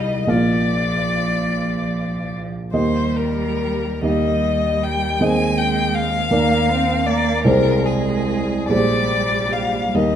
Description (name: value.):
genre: classical, slow romantic movement for piano trio.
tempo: 44-54 BPM (dotted quarters).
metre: 6/8.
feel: rubato.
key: unclear.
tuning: A4 = 440 Hz.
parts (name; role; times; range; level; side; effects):
rich violin; melody; 0.0-10.2 s; Ab4 to Ab5; -22 LUFS; left 5 dB; none.
warm cello; second line; 0.0-10.2 s; F3 to C4; -25 LUFS; right 4 dB; none.
dark baby grand piano; accompaniment; 0.0-10.2 s; Bb1 to F5; -20 LUFS; right 1 dB; none.
room: wet recital hall reverb, RT60 1.6 s.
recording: none.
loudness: -17 LUFS.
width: side -9 dB against mid.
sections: 0.0-10.2 A section.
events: none.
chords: 0.3 Bb; 2.7 Eb; 5.2 Ab/Eb; 6.3 Bb/Eb; 7.5 Ab/C; 8.7 Bb13.